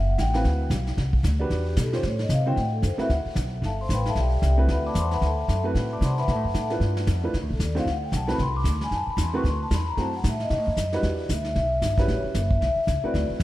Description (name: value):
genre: jazz, small-group swing and bop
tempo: 227 BPM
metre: 4/4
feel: swing 60% on 8ths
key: D mixolydian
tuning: A4 = 441 Hz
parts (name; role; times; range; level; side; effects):
- vibraphone with soft mallets; melody; 0.0-13.3 s; G4 to D6; -28 LUFS; left 2 dB; diffuse ambient delay
- upright bass; bass; 0.0-13.4 s; F#1 to C3; -24 LUFS; equal; none
- vintage brush drum kit; drums; 0.2-13.4 s; brushed snare drum, hi-hat, kick drum, snare drum; -30 LUFS; equal; none
- warm upright piano; accompaniment; 0.3-13.4 s; D3 to C5; -31 LUFS; right 2 dB; none
room: light reverb, studio ambience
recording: none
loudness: -22 LUFS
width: side -16 dB against mid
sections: 0.0-2.6 A section; 2.6-13.4 A section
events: vibraphone solo 0.0-13.4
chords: 0.4 D13; 1.5 Em7; 2.0 Am; 2.6 D6; 3.6 G13; 4.7 D13; 6.8 G13; 7.9 D13; 10.0 F#m7b5; 10.5 B7; 11.0 Em7; 12.1 A13